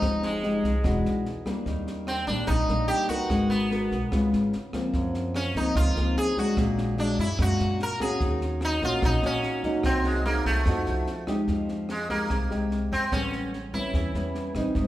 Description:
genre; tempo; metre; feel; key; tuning
bossa nova; 147 BPM; 4/4; straight; unclear; A4 = 439 Hz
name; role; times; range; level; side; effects
sitar; melody; 0.0-14.5 s; Ab3 to Bb4; -29 LUFS; equal; none
nylon-string guitar; accompaniment; 0.0-14.9 s; Gb2 to Bb4; -27 LUFS; left 1 dB; none
upright bass; bass; 0.0-14.9 s; E1 to Gb2; -29 LUFS; equal; none
compact cocktail drum kit; drums; 0.0-14.8 s; kick drum, rim click, snare drum; -33 LUFS; equal; none
room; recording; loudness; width
wet recital hall reverb, RT60 1.6 s; recorded in a church or concert hall; -24 LUFS; side -14 dB against mid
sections
0.0-11.5 A section; 11.5-14.9 B section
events
none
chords
0.0 Fm9; 0.8 E9; 1.7 Ebmaj7; 3.3 Abm9; 4.1 Db7; 4.9 Gbmaj9#11; 6.6 Bb7alt; 8.2 Ebm7; 9.8 Cm7b5; 10.7 F7b9; 11.5 Fm9; 13.1 A9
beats
| 0.03 0.44 0.84 1.25 | 1.66 2.07 2.48 2.89 | 3.30 3.71 4.12 4.53 | 4.93 5.34 5.75 6.16 | 6.57 6.98 7.39 7.80 | 8.21 8.62 9.03 9.44 | 9.84 10.25 10.66 11.07 | 11.48 11.89 12.30 12.71 | 13.12 13.53 13.94 14.35 | 14.75

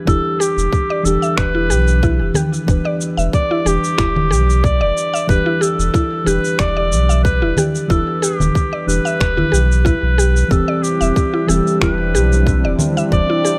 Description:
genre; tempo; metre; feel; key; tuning
organic downtempo; 92 BPM; 4/4; swing 53% on 16ths; E minor; A4 = 443 Hz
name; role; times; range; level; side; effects
muted felt-like synth keys; accompaniment; 0.0-13.6 s; E3 to C5; -24 LUFS; equal; chorus, sidechain pumping
bright clarinet; melody; 0.1-13.6 s; G4 to D5; -23 LUFS; equal; delay
mallet-like synth pluck; arpeggios; 0.1-13.6 s; E4 to E5; -25 LUFS; equal; chorus, cassette tape, delay
warm sub bass; bass; 0.1-13.2 s; E1 to B1; -19 LUFS; equal; sidechain pumping
electronic cabasa, finger snaps and congas; drums; 0.1-13.6 s; none; -24 LUFS; equal; overdrive, low-pass filter on perc, low-pass filter on snare
electronic kick drum; drums; 0.1-13.3 s; none; -19 LUFS; equal; none
warm analog pad; sustained chords; 10.5-13.6 s; G3 to E4; -26 LUFS; equal; chorus, tremolo, sidechain pumping
room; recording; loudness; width
light reverb, digital ambience; none; -16 LUFS; mono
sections
0.1-13.6 A section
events
none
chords
0.1 Em7; 10.5 C/E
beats
| 0.07 0.72 1.38 2.03 | 2.68 3.33 3.98 4.64 | 5.29 5.94 6.59 7.25 | 7.90 8.55 9.20 9.85 | 10.51 11.16 11.81 12.46 | 13.12

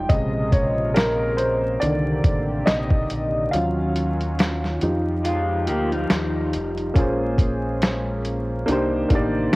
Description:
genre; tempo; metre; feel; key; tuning
lo-fi hip hop; 70 BPM; 4/4; swing 56% on 16ths; Bb minor; A4 = 440 Hz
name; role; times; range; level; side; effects
warm upright piano; accompaniment; 0.0-9.6 s; C3 to G5; -23 LUFS; equal; low-pass filter, cassette tape
warm analog pad; sustained chords; 0.0-9.6 s; C3 to D5; -31 LUFS; equal; chorus, low-pass filter, cassette tape
deep dub fingered electric bass; bass; 0.0-9.5 s; F1 to F2; -27 LUFS; equal; none
lo-fi sampler-style drum kit; drums; 0.1-9.6 s; hi-hat, kick drum, snare drum; -21 LUFS; equal; none
electric guitar through a small old amp; second line; 5.2-6.9 s; G3 to G4; -25 LUFS; left 1 dB; low-pass filter, cassette tape, tape echo
room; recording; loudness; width
light reverb, digital ambience; home recording on cassette, vinyl crackle; -19 LUFS; side -22 dB against mid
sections
0.0-7.0 A section; 7.0-9.6 B section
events
upright piano solo 0.0-7.0; kick muted 3.5-7.0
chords
0.1 Bbm9; 1.8 Cm9; 3.5 Ebm9; 4.8 Fsus2; 7.0 Bbm9; 8.7 Cm9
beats
| 0.10 0.96 1.82 2.67 | 3.53 4.39 5.24 6.10 | 6.96 7.82 8.67 9.53

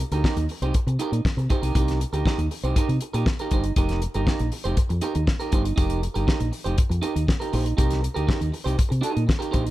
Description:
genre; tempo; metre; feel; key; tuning
disco; 119 BPM; 4/4; straight; unclear; A4 = 438 Hz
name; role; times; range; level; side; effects
electric guitar at the edge of break-up; accompaniment; 0.0-9.7 s; Eb4 to C5; -28 LUFS; right 4 dB; none
fingered electric bass; bass; 0.0-9.7 s; F1 to C3; -24 LUFS; equal; none
damped 70s drum kit; drums; 0.0-9.7 s; hi-hat, kick drum, snare drum; -24 LUFS; equal; none
room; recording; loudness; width
little or no reverb; none; -21 LUFS; side -16 dB against mid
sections
0.0-9.7 A section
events
none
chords
0.0 Cm7; 3.8 F9sus4; 7.8 Cm7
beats
0.24 0.75 1.25 | 1.75 2.26 2.76 3.26 | 3.77 4.27 4.77 5.27 | 5.78 6.28 6.78 7.28 | 7.79 8.29 8.79 9.29

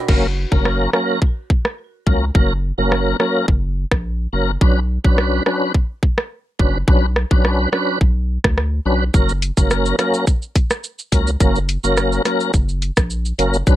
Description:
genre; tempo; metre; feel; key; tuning
dancehall; 106 BPM; 4/4; straight; unclear; A4 = 440 Hz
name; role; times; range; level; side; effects
flamenco guitar; arpeggios; 0.0-0.6 s; D4 to C#5; -31 LUFS; right 3 dB; none
tonewheel organ; accompaniment; 0.1-13.8 s; F#3 to B4; -18 LUFS; equal; chorus vibrato, slow rotary speaker, sidechain pumping
round analog bass; bass; 0.1-13.8 s; F#1 to D2; -20 LUFS; equal; none
island pop drum kit; drums; 0.1-13.8 s; crash cymbal, hi-hat, kick drum, rim click, shaker; -16 LUFS; equal; none
room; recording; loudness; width
little or no reverb; none; -15 LUFS; side -14 dB against mid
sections
0.1-13.8 A section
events
break 0.1-9.1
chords
0.1 F#; 4.6 Bmadd9; 9.1 F#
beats
| 0.09 0.65 1.22 1.78 | 2.35 2.92 3.48 4.05 | 4.61 5.18 5.75 6.31 | 6.88 7.44 8.01 8.57 | 9.14 9.71 10.27 10.84 | 11.40 11.97 12.54 13.10 | 13.67

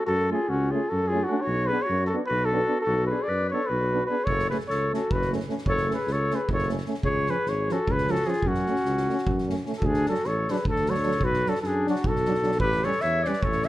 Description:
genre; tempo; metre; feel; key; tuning
balkan folk, Balkan brass band; 302 BPM (eighths); 7/8; straight; F# harmonic minor; A4 = 441 Hz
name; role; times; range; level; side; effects
mellow trumpet; melody; 0.0-13.7 s; F#4 to E5; -26 LUFS; equal; none
warm clarinet; second line; 0.0-13.7 s; C#4 to C#5; -30 LUFS; left 2 dB; none
mellow tuba; bass; 0.1-13.7 s; F#1 to F#2; -29 LUFS; equal; none
clear French horn; accompaniment; 0.3-13.7 s; C#4 to D4; -35 LUFS; left 4 dB; none
warm trombone; accompaniment; 0.3-13.3 s; E#3 to B3; -34 LUFS; right 5 dB; none
soft-mallet drum kit; percussion; 4.3-13.7 s; kick drum, snare drum; -31 LUFS; right 1 dB; none
room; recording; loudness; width
moderate recital hall reverb, RT60 1.6 s; none; -23 LUFS; side -15 dB against mid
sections
0.0-9.8 A section; 9.8-13.7 B section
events
none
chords
0.0 F#m; 1.5 Bm; 4.3 F#m; 7.1 C#; 8.4 F#m; 9.8 D; 11.2 Bm; 12.6 A7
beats
| 0.08 0.28 0.48 0.68 0.88 1.08 1.28 | 1.48 1.68 1.88 2.07 2.27 2.47 2.67 | 2.87 3.07 3.27 3.47 3.67 3.87 4.07 | 4.26 4.46 4.66 4.86 5.06 5.26 5.46 | 5.66 5.86 6.06 6.26 6.46 6.66 6.85 | 7.05 7.25 7.45 7.65 7.85 8.05 8.25 | 8.45 8.64 8.84 9.04 9.24 9.44 9.64 | 9.84 10.03 10.23 10.43 10.63 10.83 11.03 | 11.22 11.42 11.62 11.82 12.02 12.21 12.41 | 12.61 12.81 13.01 13.20 13.40 13.60

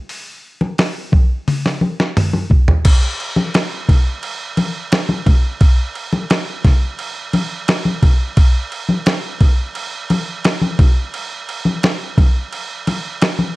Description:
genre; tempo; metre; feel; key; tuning
rock; 87 BPM; 4/4; straight; none; none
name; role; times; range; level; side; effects
dusty soul sampler-style drum kit; drums; 0.1-13.4 s; crash cymbal, hi-hat, kick drum, snare drum, toms; -15 LUFS; equal; none
congas; percussion; 0.6-13.5 s; none; -18 LUFS; left 2 dB; none
room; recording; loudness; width
digital ambience; dry, close 1970s-style studio recording; -14 LUFS; side -21 dB against mid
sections
0.0-2.9 A section; 2.9-13.6 A section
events
drum fill 1.5-2.9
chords
none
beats
| 0.09 0.78 1.47 2.16 | 2.85 3.54 4.23 4.92 | 5.61 6.30 7.00 7.68 | 8.38 9.07 9.76 10.45 | 11.14 11.83 12.52 13.21

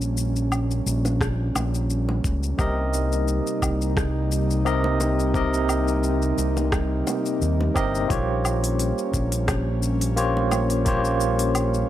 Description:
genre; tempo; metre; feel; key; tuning
sunset chillout; 87 BPM; 4/4; swing 54% on 16ths; Bb dorian; A4 = 440 Hz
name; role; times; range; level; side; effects
airy breathy pad; sustained chords; 0.0-11.9 s; C3 to Eb4; -28 LUFS; right 1 dB; chorus
overdriven fingered electric bass; bass; 0.0-11.8 s; G1 to Eb2; -24 LUFS; equal; tube saturation
smooth R&B drum kit; drums; 0.0-11.9 s; hi-hat, rim click, shaker, woodblock; -30 LUFS; left 2 dB; none
bongos; percussion; 1.1-10.7 s; none; -32 LUFS; left 1 dB; none
electronic kick drum; drums; 1.2-11.0 s; none; -26 LUFS; equal; overdrive
barky tine electric piano; accompaniment; 2.6-11.9 s; C3 to Eb5; -25 LUFS; equal; medium stereo tremolo, auto-pan, analog delay
room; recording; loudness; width
light reverb; dry, gritty hardware recording; -20 LUFS; side -12 dB against mid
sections
0.0-11.9 A section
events
none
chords
0.0 Bbm6; 2.6 Cm7; 8.1 Bbm69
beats
0.52 1.21 1.89 | 2.58 3.27 3.96 4.65 | 5.34 6.03 6.72 7.41 | 8.10 8.79 9.48 10.17 | 10.86 11.55

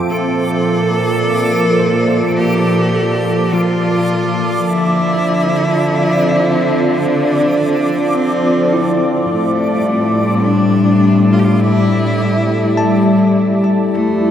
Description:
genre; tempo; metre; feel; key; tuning
ambient; 52 BPM; 4/4; straight; unclear; A4 = 440 Hz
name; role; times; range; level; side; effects
evolving wavetable pad; sustained chords; 0.0-14.3 s; F3 to E5; -14 LUFS; equal; phaser, built-in reverb
bell-like tine electric piano; arpeggios; 0.0-14.3 s; F3 to A5; -23 LUFS; left 1 dB; medium stereo tremolo, tape echo
backwards swelling texture; texture; 0.0-14.3 s; D6; -27 LUFS; right 1 dB; built-in reverb
rich cello; melody; 0.1-14.3 s; A3 to A4; -19 LUFS; right 1 dB; tape echo
clear studio cello section; bass; 0.1-14.3 s; F2 to D3; -20 LUFS; equal; none
room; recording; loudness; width
wet huge ambient reverb, RT60 7.5 s; dreamy mix soaked in reverb; -12 LUFS; side -10 dB against mid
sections
0.0-14.3 A section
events
none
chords
0.1 Bbmaj7; 4.7 Dm7; 9.3 A7sus4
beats
| 0.07 1.22 2.38 3.53 | 4.68 5.84 6.99 8.15 | 9.30 10.45 11.61 12.76 | 13.91

